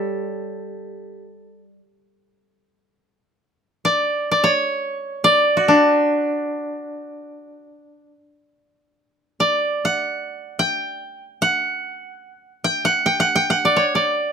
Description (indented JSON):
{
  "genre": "japanese traditional, Japanese chamber music",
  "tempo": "free time",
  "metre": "none",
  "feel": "none",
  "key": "D ryukyu",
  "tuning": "A4 = 442 Hz",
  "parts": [
    { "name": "koto", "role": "melody", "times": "0.0-14.3 s", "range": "D4 to G5", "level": "-18 LUFS", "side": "equal", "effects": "none" },
    { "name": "koto", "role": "accompaniment", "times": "0.0-1.8 s", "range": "G3", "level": "-34 LUFS", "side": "left 6 dB", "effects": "none" }
  ],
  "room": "little or no reverb",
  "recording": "close, detailed microphones",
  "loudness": "-17 LUFS",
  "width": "side -6 dB against mid",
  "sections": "0.0-8.4 A section; 8.4-14.3 A section",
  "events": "none",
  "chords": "none"
}